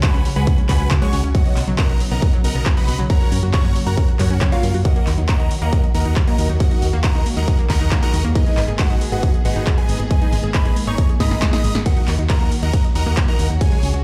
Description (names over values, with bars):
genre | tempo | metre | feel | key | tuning
uplifting trance | 137 BPM | 4/4 | straight | Eb minor | A4 = 442 Hz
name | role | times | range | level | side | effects
supersaw chords | melody | 0.0-13.9 s | Eb4 to Eb6 | -30 LUFS | equal | phaser, sidechain pumping, tape echo
plucky unison lead | second line | 0.0-13.9 s | Eb5 to Eb6 | -34 LUFS | equal | sidechain pumping, tape echo
warm studio string section | sustained chords | 0.0-14.0 s | Db3 to Ab4 | -32 LUFS | equal | sidechain pumping
analog pluck | arpeggios | 0.0-14.0 s | B2 to Ab4 | -30 LUFS | equal | chorus, sidechain pumping, tape echo
electronic kick drum | drums | 0.0-13.7 s | none | -19 LUFS | equal | none
punchy analog drum machine | drums | 0.0-14.0 s | handclaps, hi-hat, ride cymbal, snare drum | -30 LUFS | equal | sidechain pumping on hats, sidechain pumping on cymbals
solid FM bass | bass | 0.1-14.0 s | Ab1 to Ab2 | -22 LUFS | equal | sidechain pumping
room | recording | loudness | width
light reverb | played on a big sound system in a bare room, large studio reverb | -18 LUFS | mono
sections
0.0-14.0 A section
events
drum fill 11.2-11.9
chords
0.0 Dbsus4; 1.3 Badd9; 3.1 Gb; 4.9 Ebm; 8.4 Abmadd9; 11.9 Ebm